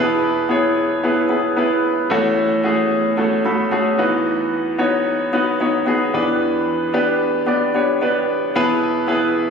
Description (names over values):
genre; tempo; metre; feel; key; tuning
pop; 112 BPM; 4/4; straight; E major; A4 = 440 Hz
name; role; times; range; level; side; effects
clear concert grand piano; solo; 0.0-9.5 s; E2 to B5; -16 LUFS; equal; ping-pong delay
room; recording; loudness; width
moderate concert hall reverb, RT60 2.0 s; recorded on a phone in the room, studio reverb, compression; -16 LUFS; side -6 dB against mid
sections
0.0-9.5 A section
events
grand piano fill 3.2-4.3, 7.7-8.6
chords
0.0 E; 2.1 F#m/E; 4.0 B/E; 6.1 G/E; 8.6 E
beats
0.51 1.05 1.58 | 2.12 2.65 3.19 3.73 | 4.26 4.80 5.33 5.87 | 6.41 6.94 7.48 8.01 | 8.55 9.09